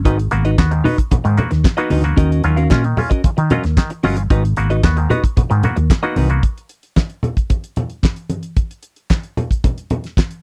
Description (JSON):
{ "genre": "disco", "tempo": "113 BPM", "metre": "4/4", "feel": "straight", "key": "unclear", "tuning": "A4 = 439 Hz", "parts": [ { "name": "clean electric guitar", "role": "accompaniment", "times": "0.0-6.3 s", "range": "Db4 to F5", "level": "-23 LUFS", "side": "equal", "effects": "lush chorus" }, { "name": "hollow-body short-scale fingered electric bass", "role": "bass", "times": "0.0-6.4 s", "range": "G1 to Eb3", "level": "-19 LUFS", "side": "equal", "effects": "none" }, { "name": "mellow clav", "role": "accompaniment", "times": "0.1-6.4 s", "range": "Ab2 to Gb4", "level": "-25 LUFS", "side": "equal", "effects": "auto-wah" }, { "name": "damped 70s drum kit", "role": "drums", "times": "0.1-10.4 s", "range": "handclaps, hi-hat, kick drum, snare drum", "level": "-17 LUFS", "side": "equal", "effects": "none" }, { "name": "congas", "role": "percussion", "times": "0.1-10.3 s", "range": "none", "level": "-25 LUFS", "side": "equal", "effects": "none" } ], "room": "little or no reverb", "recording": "dry, close 1970s-style studio recording", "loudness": "-17 LUFS", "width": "mono", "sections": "0.0-6.4 A section; 6.4-10.4 B section", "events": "none", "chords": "0.1 Abm7; 2.2 Ebm7; 4.3 Abm7; 6.4 N.C." }